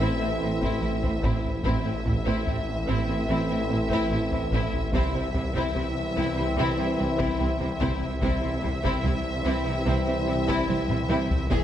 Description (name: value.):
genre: cinematic, hybrid orchestral and electronic film score.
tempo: 73 BPM.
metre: 4/4.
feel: straight.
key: unclear.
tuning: A4 = 439 Hz.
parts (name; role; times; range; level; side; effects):
clear symphonic violin section; melody; 0.0-11.6 s; E5; -34 LUFS; left 2 dB; none.
rich symphonic violin section; second line; 0.0-11.6 s; E4 to G#4; -34 LUFS; left 4 dB; none.
rich studio viola section; accompaniment; 0.0-11.6 s; B3 to C4; -33 LUFS; right 2 dB; none.
dark trombone section; sustained chords; 0.0-11.6 s; E3 to A3; -34 LUFS; right 2 dB; none.
warm French horn section; sustained chords; 0.0-11.6 s; B3 to E4; -32 LUFS; left 1 dB; none.
clear symphonic cello section; bass; 0.0-11.6 s; E2 to C3; -33 LUFS; right 2 dB; none.
rich symphonic double bass section; bass; 0.0-11.6 s; E1 to C2; -32 LUFS; right 2 dB; none.
snarling distorted saw bass; bass; 0.0-11.6 s; E1 to C2; -32 LUFS; equal; distortion.
taiko ensemble; drums; 0.6-11.6 s; none; -31 LUFS; equal; none.
room: moderate scoring stage reverb, RT60 2.0 s.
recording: none.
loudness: -23 LUFS.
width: side -10 dB against mid.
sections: 0.0-11.6 A section.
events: drum fill 10.7-11.5.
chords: 0.0 Am; 4.9 C.